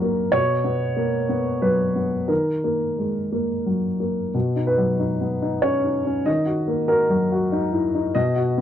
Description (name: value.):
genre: neoclassical minimalist piano.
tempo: 87-97 BPM.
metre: 3/4.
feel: rubato.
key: B major.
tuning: A4 = 440 Hz.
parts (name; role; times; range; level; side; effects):
dark baby grand piano; solo; 0.0-8.6 s; B2 to D#5; -20 LUFS; equal; none.
room: moderate booth ambience, RT60 0.2 s.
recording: dark, warm production.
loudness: -20 LUFS.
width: side -10 dB against mid.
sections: 0.0-4.3 A section; 4.3-8.6 A section.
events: none.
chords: 0.3 Bsus2; 2.3 D#m; 4.3 Badd9; 6.3 D#m.